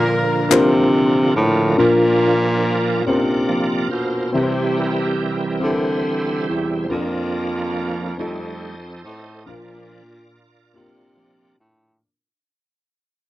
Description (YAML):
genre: slow gospel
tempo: 47 BPM (dotted quarters)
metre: 6/8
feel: straight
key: Bb major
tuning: A4 = 440 Hz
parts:
  - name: warm horn section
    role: melody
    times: 0.0-0.9 s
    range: Bb3 to Bb4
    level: -22 LUFS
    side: equal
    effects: none
  - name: warm upright piano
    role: accompaniment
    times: 0.0-12.1 s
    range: Bb2 to D5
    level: -21 LUFS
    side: left 2 dB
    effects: none
  - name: bright tonewheel organ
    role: sustained chords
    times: 0.0-11.6 s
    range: D3 to Eb5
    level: -23 LUFS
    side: right 3 dB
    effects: fast rotary speaker, overdrive, chorus vibrato
  - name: breathy baritone saxophone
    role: bass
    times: 0.0-12.0 s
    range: E2 to D3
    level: -20 LUFS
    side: equal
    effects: none
  - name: group handclap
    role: percussion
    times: 0.5-0.9 s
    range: none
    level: -19 LUFS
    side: left 9 dB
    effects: none
room: small room ambience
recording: dry, close 1970s-style studio recording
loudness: -16 LUFS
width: side -15 dB against mid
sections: 0.0-1.8 A section; 1.8-12.0 B section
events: fade-out 1.8-12.0; tonewheel organ solo 1.8-12.0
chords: 0.0 Bb; 4.3 C; 6.9 Bb/F; 8.2 F7; 9.5 Bb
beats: 0.52 | 1.79 3.07 | 4.35 5.63 | 6.91 8.19 | 9.47 10.75